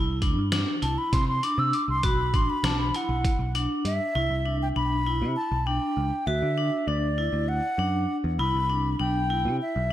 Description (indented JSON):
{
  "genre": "progressive instrumental, band music in an uneven meter",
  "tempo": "198 BPM (eighths)",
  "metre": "7/8",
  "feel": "straight",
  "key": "unclear",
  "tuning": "A4 = 441 Hz",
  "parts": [
    { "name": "vibraphone with hard mallets", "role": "arpeggios", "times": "0.0-9.9 s", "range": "D4 to F#4", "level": "-30 LUFS", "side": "equal", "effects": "slapback echo" },
    { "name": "picked electric bass", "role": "bass", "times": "0.0-9.9 s", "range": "A1 to D3", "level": "-27 LUFS", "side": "equal", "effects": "none" },
    { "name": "trip hop sampler-style drum kit", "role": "drums", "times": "0.2-4.0 s", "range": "hi-hat, kick drum, snare drum", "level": "-28 LUFS", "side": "equal", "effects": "none" },
    { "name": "wooden flute", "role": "melody", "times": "0.8-9.9 s", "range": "D5 to E6", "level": "-28 LUFS", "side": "left 1 dB", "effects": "slapback echo, ping-pong delay" }
  ],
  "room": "moderate scoring stage reverb, RT60 2.0 s, digital ambience",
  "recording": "big arena sound",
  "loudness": "-23 LUFS",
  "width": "side -12 dB against mid",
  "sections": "0.0-4.2 A section; 4.2-9.9 B section",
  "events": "flute solo 0.0-4.2",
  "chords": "0.0 C; 2.0 Bm; 4.2 Cmaj9; 6.3 Dadd9; 8.4 Cmaj9"
}